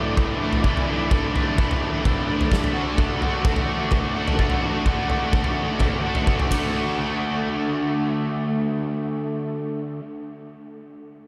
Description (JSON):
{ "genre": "indie rock", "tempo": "128 BPM", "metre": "4/4", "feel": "straight", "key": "D major", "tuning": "A4 = 440 Hz", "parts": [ { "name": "biting overdriven guitar", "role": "riff", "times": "0.0-10.0 s", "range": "A2 to F#4", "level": "-27 LUFS", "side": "equal", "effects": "lush chorus, delay" }, { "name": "cranked stack guitar", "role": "riff", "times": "0.0-10.0 s", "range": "E3 to F#4", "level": "-30 LUFS", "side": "equal", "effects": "overdrive, ensemble chorus" }, { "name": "big rock drum kit", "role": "drums", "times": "0.2-6.6 s", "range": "kick drum, ride cymbal, snare drum, toms", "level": "-25 LUFS", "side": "equal", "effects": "none" } ], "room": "moderate huge ambient reverb, RT60 7.7 s", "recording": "dreamy mix soaked in reverb", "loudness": "-23 LUFS", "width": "mono", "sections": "0.0-6.7 A section; 6.7-10.5 B section", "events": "none", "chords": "0.0 Asus4; 2.8 D", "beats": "0.17 0.64 | 1.11 1.58 2.05 2.52 | 2.99 3.46 3.92 4.39 | 4.86 5.33 5.80 6.27 | 6.74 7.21 7.68 8.15 | 8.62 9.09 9.56 10.03" }